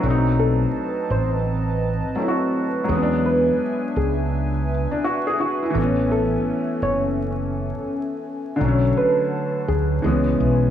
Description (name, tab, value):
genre	lo-fi hip hop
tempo	84 BPM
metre	4/4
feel	swing 62% on 16ths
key	B dorian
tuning	A4 = 440 Hz
part	felt-muted upright piano	accompaniment	0.0-10.7 s	D3 to G#4	-22 LUFS	left 1 dB	low-pass filter, plate reverb
part	hollow soft pad	sustained chords	0.0-10.7 s	D3 to A5	-29 LUFS	right 1 dB	chorus, low-pass filter, plate reverb
part	mellow fretless electric bass	bass	0.0-10.7 s	F#1 to E2	-22 LUFS	equal	none
part	soft struck synth lead	melody	0.4-9.9 s	G#4 to C#5	-25 LUFS	right 1 dB	chorus, low-pass filter, plate reverb, analog delay
room	moderate studio reverb, RT60 0.5 s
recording	vinyl crackle, small room ambience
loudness	-19 LUFS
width	side -10 dB against mid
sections	0.0-8.6 A section; 8.6-10.7 B section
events	none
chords	0.0 B7b9; 2.9 E7; 5.7 Amaj7; 8.6 Bm7; 10.0 C#m7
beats	| 0.03 0.74 1.46 2.17 | 2.89 3.60 4.32 5.03 | 5.74 6.46 7.17 7.89 | 8.60 9.31 10.03